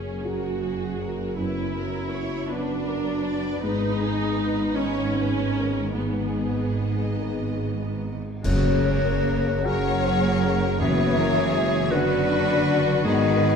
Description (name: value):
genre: cinematic, emotional film score for orchestra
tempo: 48-54 BPM (dotted quarters)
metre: 6/8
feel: rubato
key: F# mixolydian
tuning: A4 = 440 Hz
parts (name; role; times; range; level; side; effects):
- warm symphonic violin section; melody; 0.0-13.6 s; G#4 to D#5; -34 LUFS; left 2 dB; none
- rich symphonic viola section; accompaniment; 0.0-13.6 s; D#3 to F#4; -29 LUFS; right 2 dB; none
- warm grand piano; accompaniment; 0.0-13.6 s; F#2 to B4; -31 LUFS; left 2 dB; none
- dark French horn section; sustained chords; 0.0-13.6 s; B2 to G#4; -32 LUFS; left 6 dB; none
- rich symphonic cello section; bass; 0.0-13.6 s; F#2 to F#3; -29 LUFS; right 2 dB; none
- rich symphonic double bass section; bass; 0.0-13.6 s; F#1 to G#1; -30 LUFS; right 3 dB; none
- warm symphonic violin section; second line; 0.3-13.6 s; F#4 to D5; -34 LUFS; left 2 dB; none
- cymbal swell, clash cymbals and concert bass drum; percussion; 6.0-10.0 s; none; -30 LUFS; equal; none
- clear oboe; second line; 8.4-13.6 s; F#4 to A#4; -31 LUFS; right 2 dB; none
- mellow hollow large flute ensemble; second line; 8.4-13.6 s; C#5 to F#5; -26 LUFS; left 5 dB; none
- timpani; percussion; 8.5-11.9 s; F#2; -30 LUFS; left 3 dB; none
room: moderate scoring stage reverb, RT60 1.5 s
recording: dark, warm production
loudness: -21 LUFS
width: side -6 dB against mid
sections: 0.0-8.4 A section; 8.4-13.6 B section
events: band accent 8.4-9.2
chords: 0.0 F#add9; 1.4 Bm/F#; 3.6 G#m; 8.4 F#add9; 10.8 Bm/F#; 13.0 G#m